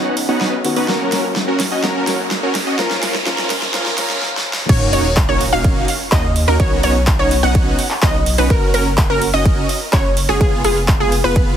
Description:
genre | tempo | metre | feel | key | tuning
EDM, festival progressive house | 126 BPM | 4/4 | straight | Eb minor | A4 = 439 Hz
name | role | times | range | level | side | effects
felt-muted upright piano | accompaniment | 0.0-4.7 s | D#3 to Bb4 | -25 LUFS | left 4 dB | sidechain pumping, digital delay
supersaw chords | riff | 0.0-11.6 s | Bb3 to F#5 | -20 LUFS | right 1 dB | sidechain pumping, low-pass filter, digital delay
saturated sub bass | bass | 0.0-11.5 s | Eb1 to Gb2 | -21 LUFS | equal | sidechain pumping, high-pass filter
riser and sub drop | sound effects | 0.0-6.6 s | none | -25 LUFS | right 1 dB | none
big-room dance drum kit | drums | 0.2-11.5 s | crash cymbal, handclaps, hi-hat, ride cymbal, snare drum | -22 LUFS | right 1 dB | none
wide unison pluck | arpeggios | 4.7-11.6 s | Ab4 to F#5 | -19 LUFS | right 1 dB | cassette tape, sidechain pumping, digital delay
electronic kick drum | drums | 4.7-11.5 s | none | -16 LUFS | equal | overdrive
room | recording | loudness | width
light reverb | heavily compressed radio sound, multiband compression, high-pass filter | -14 LUFS | side -9 dB against mid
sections
0.0-4.7 A section; 4.7-11.6 B section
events
build-up 0.0-4.7; drum fill 0.0-4.2, 4.2-4.7; riser 0.0-4.2; filter sweep on supersaw synth 0.0-4.7; filter sweep 0.0-4.7; drop 4.7-11.6; impact 4.7-6.6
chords
0.0 Badd9; 0.9 Gb; 2.8 Bbm/F; 4.7 Ebm7; 6.6 Badd9; 8.5 Gb; 10.4 Fdim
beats
0.41 | 0.88 1.36 1.84 2.31 | 2.79 3.26 3.74 4.22 | 4.69 5.17 5.64 6.12 | 6.60 7.07 7.55 8.03 | 8.50 8.98 9.46 9.93 | 10.41 10.88 11.36

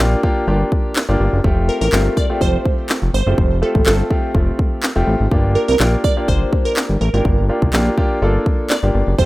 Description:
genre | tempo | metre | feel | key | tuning
dance-pop | 124 BPM | 4/4 | straight | G minor | A4 = 440 Hz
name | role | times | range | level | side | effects
clear concert grand piano | accompaniment | 0.0-9.3 s | A3 to A4 | -21 LUFS | equal | sidechain pumping
fat analog bass | bass | 0.0-9.3 s | F1 to C2 | -17 LUFS | equal | sidechain pumping
house drum kit | drums | 0.0-9.3 s | handclaps, kick drum, snare drum | -18 LUFS | equal | none
glassy wavetable pluck | melody | 1.7-9.3 s | A4 to D5 | -21 LUFS | right 2 dB | chorus
room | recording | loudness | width
digital ambience | rough home demo mix | -14 LUFS | side -18 dB against mid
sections
0.0-9.3 A section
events
none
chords
0.0 Gm7; 1.4 Fadd9; 5.3 Gm7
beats
0.47 0.96 | 1.44 1.93 2.41 2.89 | 3.38 3.86 4.35 4.83 | 5.31 5.80 6.28 6.76 | 7.25 7.73 8.22 8.70 | 9.18

